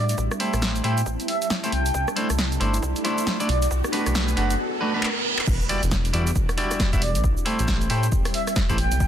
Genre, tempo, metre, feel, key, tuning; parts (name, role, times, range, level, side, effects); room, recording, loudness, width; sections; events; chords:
UK garage, two-step garage; 136 BPM; 4/4; swing 61% on 16ths; A4 = 444 Hz
breathy flute-like synth lead; melody; 0.0-9.1 s; D5 to G5; -30 LUFS; right 2 dB; analog chorus, tape echo
soft string machine; sustained chords; 0.0-9.1 s; G3 to F#4; -34 LUFS; left 1 dB; phaser, ensemble chorus, sidechain pumping
dark detuned saw bass; bass; 0.0-9.1 s; E1 to A2; -24 LUFS; equal
riser, reverse cymbal and impact; sound effects; 1.1-7.2 s; -32 LUFS; right 1 dB
warbly tape-like pad; texture; 0.0-4.6 s; G3 to A5; -34 LUFS; right 2 dB; chorus, built-in reverb, sidechain pumping
punchy analog drum machine; drums; 0.1-9.1 s; crash cymbal, handclaps, hi-hat, rim click, shaker, snare drum; -28 LUFS; equal
electronic kick drum; drums; 0.2-9.1 s; -24 LUFS; equal; high-pass filter on kick
clean electric guitar; stabs; 0.4-8.8 s; G3 to E5; -27 LUFS; equal; tape echo
light reverb; dense, heavily limited modern master; -20 LUFS; side -10 dB against mid
0.0-5.5 A section; 5.5-9.1 B section
build-up 0.0-5.5; filter sweep on string machine 0.0-5.5; riser 1.1-5.5; reverse cymbal 4.6-5.5; drum fill 5.0-5.5; drop 5.5-9.1; impact 5.5-7.2
0.0 Am7; 1.7 C69; 3.5 Bm7; 5.5 Em9; 7.0 Am7